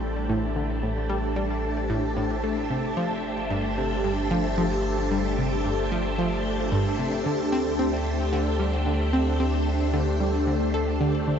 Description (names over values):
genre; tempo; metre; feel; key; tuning
ambient, sequencer-driven space music; 112 BPM; 4/4; straight; unclear; A4 = 440 Hz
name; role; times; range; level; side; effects
phased string machine; sustained chords; 0.0-11.4 s; A3 to G5; -27 LUFS; equal; ensemble chorus, phaser
warm sub bass; bass; 0.0-11.4 s; G1 to D2; -29 LUFS; equal; none
wind-like tuned noise texture; texture; 0.0-11.4 s; A4; -35 LUFS; right 1 dB; built-in reverb
analog pluck; riff; 0.3-11.4 s; G2 to A4; -28 LUFS; equal; chorus, phaser, ping-pong delay
room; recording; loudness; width
wet shimmer reverb, RT60 9.4 s; dark, warm production, nothing above 7.9 kHz; -23 LUFS; side -8 dB against mid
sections
0.0-11.4 A section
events
none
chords
0.0 Am7; 3.0 Gsus4; 7.3 D5